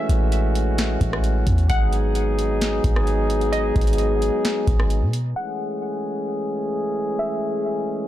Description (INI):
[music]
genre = hip hop, atmospheric cloud-rap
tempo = 131 BPM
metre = 4/4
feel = half-time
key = A lydian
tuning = A4 = 440 Hz
[part]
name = glassy wavetable pluck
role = melody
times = 0.0-8.1 s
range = D#5 to F#5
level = -31 LUFS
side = equal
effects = chorus, digital delay
[part]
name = dark brass ensemble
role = sustained chords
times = 0.0-8.1 s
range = E3 to G#4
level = -23 LUFS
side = equal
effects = sidechain pumping
[part]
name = clean 808-style bass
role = bass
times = 0.1-5.3 s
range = G#1 to B2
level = -21 LUFS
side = equal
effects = none
[part]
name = booming analog drum machine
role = drums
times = 0.1-5.2 s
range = hi-hat, kick drum, rim click, snare drum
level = -24 LUFS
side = equal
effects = none
[sound]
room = little or no reverb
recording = blown-out, overdriven recording, overdrive, low-pass filter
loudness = -19 LUFS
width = side -13 dB against mid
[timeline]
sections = 0.0-5.4 A section; 5.4-8.1 B section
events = filter sweep 5.4-8.1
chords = 0.0 Amaj7; 1.7 G#m7; 5.4 Amaj7